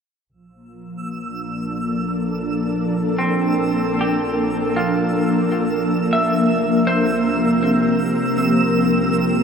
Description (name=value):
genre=ambient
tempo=free time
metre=none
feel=none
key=Bb lydian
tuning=A4 = 441 Hz
part: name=ethereal airy pad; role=sustained chords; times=0.9-9.4 s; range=F3 to Bb4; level=-18 LUFS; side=equal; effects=ensemble chorus, built-in reverb, shimmer reverb
part: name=warm studio double bass section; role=bass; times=0.3-9.4 s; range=Bb1 to C2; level=-36 LUFS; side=equal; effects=none
part: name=twinkling granular texture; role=texture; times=1.0-9.4 s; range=E6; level=-28 LUFS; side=right 3 dB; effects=built-in reverb, shimmer reverb
part: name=semi-hollow electric guitar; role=arpeggios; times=3.2-9.4 s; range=C4 to E5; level=-24 LUFS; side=equal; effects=spring reverb, ping-pong delay, shimmer reverb
room=wet huge ambient reverb, RT60 7.2 s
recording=none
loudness=-17 LUFS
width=side -6 dB against mid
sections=0.3-9.4 A section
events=fade-in on double bass section 0.3-9.4; filter sweep on ambient pad 0.3-9.4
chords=0.3 Bbmaj7; 6.3 C7sus4